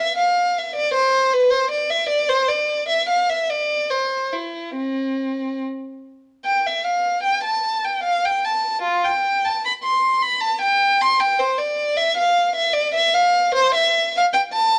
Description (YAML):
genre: classical, baroque-style suite movement for unaccompanied violin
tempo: 70-79 BPM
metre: 3/4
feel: rubato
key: C major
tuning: A4 = 444 Hz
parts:
  - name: warm violin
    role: solo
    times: 0.0-14.8 s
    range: C4 to C6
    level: -20 LUFS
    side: equal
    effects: none
room: moderate stone room reverb, RT60 0.9 s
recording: none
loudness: -20 LUFS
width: mono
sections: 0.0-6.5 A section; 6.5-14.8 B section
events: none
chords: none